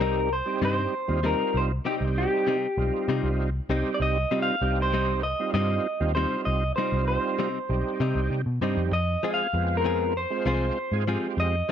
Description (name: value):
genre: blues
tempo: 98 BPM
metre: 4/4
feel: straight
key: C minor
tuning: A4 = 440 Hz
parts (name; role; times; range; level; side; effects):
- electric guitar through a small old amp; melody; 0.0-11.7 s; G4 to F5; -27 LUFS; left 1 dB; none
- overdriven tonewheel organ; accompaniment; 0.0-11.7 s; G3 to C5; -30 LUFS; right 5 dB; slow rotary speaker, chorus vibrato
- direct-recorded clean electric guitar; stabs; 0.0-11.7 s; C3 to Ab4; -31 LUFS; left 7 dB; none
- vintage muted picked electric bass; bass; 0.0-11.6 s; B1 to C3; -27 LUFS; equal; none
room: digital ambience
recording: dry, close 1970s-style studio recording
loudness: -23 LUFS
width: side -9 dB against mid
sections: 0.0-11.7 A section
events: none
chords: 0.0 Cm; 8.9 Fm